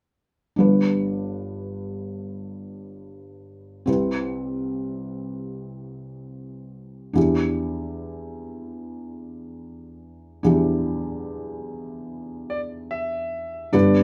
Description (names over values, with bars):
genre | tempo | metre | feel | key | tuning
pop | 73 BPM | 4/4 | straight | unclear | A4 = 441 Hz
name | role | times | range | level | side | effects
felt-muted upright piano | accompaniment | 0.6-14.0 s | G1 to B4 | -26 LUFS | equal | none
bright concert grand piano | melody | 12.5-14.0 s | D5 to E5 | -30 LUFS | equal | none
airy breathy pad | sustained chords | 13.7-14.0 s | none | barely audible | none | none
room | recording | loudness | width
wet small room reverb, RT60 0.5 s | rough home demo mix | -25 LUFS | mono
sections
0.6-13.7 A section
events
none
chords
0.6 G; 3.9 Cmaj7; 7.2 Em7